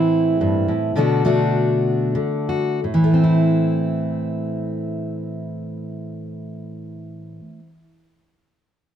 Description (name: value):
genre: folk, solo fingerstyle acoustic guitar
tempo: 82-114 BPM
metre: 3/4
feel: rubato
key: A dorian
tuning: A4 = 438 Hz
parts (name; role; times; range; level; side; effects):
- fingerpicked steel-string acoustic guitar; solo; 0.0-7.8 s; G2 to F#4; -19 LUFS; equal; none
room: light reverb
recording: close, detailed microphones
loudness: -18 LUFS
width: side -9 dB against mid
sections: 0.0-2.8 A section; 2.8-7.1 B section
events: slowing down 0.0-2.8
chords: 0.0 Am; 1.0 Bm7; 2.8 Am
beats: 0.42 | 0.96 1.54 2.16 | 2.84 3.56 4.27 | 4.97 5.68 6.39